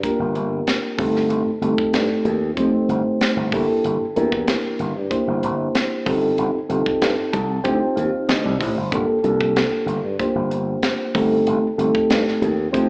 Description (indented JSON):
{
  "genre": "electric jazz fusion",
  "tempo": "94 BPM",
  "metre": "4/4",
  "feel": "straight",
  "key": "unclear",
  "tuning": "A4 = 440 Hz",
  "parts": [
    { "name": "mellow reed electric piano", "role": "accompaniment", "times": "0.0-12.9 s", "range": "A3 to A5", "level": "-20 LUFS", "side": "equal", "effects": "spring reverb" },
    { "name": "slap bass with an envelope filter", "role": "bass", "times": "0.0-12.9 s", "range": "G1 to G2", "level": "-23 LUFS", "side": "equal", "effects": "none" },
    { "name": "tight funk drum kit", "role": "drums", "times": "0.0-12.9 s", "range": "hi-hat, kick drum, snare drum", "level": "-23 LUFS", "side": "equal", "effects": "none" }
  ],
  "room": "light reverb, studio reverb",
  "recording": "live gig heard through the venue's PA, club reverb, AM radio sound",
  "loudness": "-18 LUFS",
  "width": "side -29 dB against mid",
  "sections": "0.0-12.9 A section",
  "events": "reed electric piano fill 7.0-8.9",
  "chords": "0.0 Gm7; 1.0 Am7b5/G; 3.5 C13/G; 6.1 F9/G; 8.9 Gm9; 11.1 Am7b5/G"
}